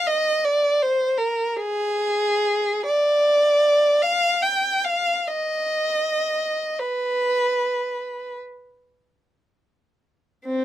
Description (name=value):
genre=classical, free, expressive piece for unaccompanied violin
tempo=21-56 BPM (dotted quarters)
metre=6/8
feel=rubato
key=unclear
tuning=A4 = 440 Hz
part: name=dark violin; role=solo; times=0.0-10.6 s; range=C4 to G5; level=-19 LUFS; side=equal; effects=none
room=little or no reverb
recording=close, detailed microphones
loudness=-19 LUFS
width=side -13 dB against mid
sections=0.0-10.4 A section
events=none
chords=none